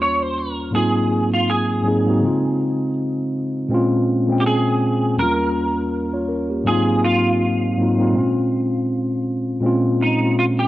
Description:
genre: hip hop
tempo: 81 BPM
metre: 4/4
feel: swing 56% on 16ths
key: Bb dorian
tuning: A4 = 443 Hz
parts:
  - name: semi-hollow electric guitar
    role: melody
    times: 0.0-10.7 s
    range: Eb4 to Db5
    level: -22 LUFS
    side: right 1 dB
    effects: ensemble chorus, low-pass filter
  - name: mellow tine electric piano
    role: accompaniment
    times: 0.0-10.7 s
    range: Eb2 to G5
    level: -18 LUFS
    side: equal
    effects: slow stereo tremolo, low-pass filter
room: moderate plate reverb, RT60 2.5 s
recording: worn, warbling old tape, cassette tape, warbly pitch drift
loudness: -17 LUFS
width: side -15 dB against mid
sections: 0.0-9.6 A section; 9.6-10.7 B section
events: none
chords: 0.0 Eb9; 0.7 Ab13; 2.2 Dbmaj9; 3.7 Bbm9; 5.2 Eb9; 6.7 Ab13; 8.1 Bbm9

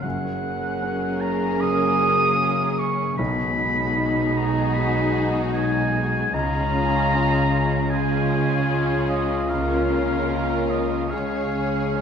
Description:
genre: cinematic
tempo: 76 BPM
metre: 4/4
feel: rubato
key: F# major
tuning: A4 = 440 Hz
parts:
  - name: muted studio violin section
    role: melody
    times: 0.0-12.0 s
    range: G#4 to C#5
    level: -33 LUFS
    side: right 1 dB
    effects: none
  - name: warm oboe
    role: second line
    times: 0.0-12.0 s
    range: D#5 to D#6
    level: -25 LUFS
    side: right 2 dB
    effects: none
  - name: muted studio viola section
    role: accompaniment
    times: 0.0-12.0 s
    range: C#4 to D#4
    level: -31 LUFS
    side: equal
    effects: none
  - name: warm concert grand piano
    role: accompaniment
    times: 0.0-12.0 s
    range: B1 to C#5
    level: -31 LUFS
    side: left 2 dB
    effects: none
  - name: mellow French horn section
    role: sustained chords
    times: 0.0-12.0 s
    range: G#3 to G#4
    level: -28 LUFS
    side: left 1 dB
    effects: none
  - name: concert harp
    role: arpeggios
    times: 0.0-12.0 s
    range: F#2 to D#5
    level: -31 LUFS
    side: left 8 dB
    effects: none
  - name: muted studio cello section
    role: bass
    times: 0.0-12.0 s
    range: F#2 to C#3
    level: -28 LUFS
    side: right 1 dB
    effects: none
  - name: muted studio double bass section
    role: bass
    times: 0.0-12.0 s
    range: F#1 to C#2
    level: -30 LUFS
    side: right 4 dB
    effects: none
  - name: muted studio violin section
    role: second line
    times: 0.1-12.0 s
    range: E#4 to G#4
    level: -33 LUFS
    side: left 4 dB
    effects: none
room: wet scoring stage reverb, RT60 1.6 s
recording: minimal, uncompressed stereo recording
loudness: -20 LUFS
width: side -7 dB against mid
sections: 0.0-12.0 A section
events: none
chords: 0.0 F#add9; 3.2 B6; 6.3 C#; 9.5 A#m/C#; 11.1 C#

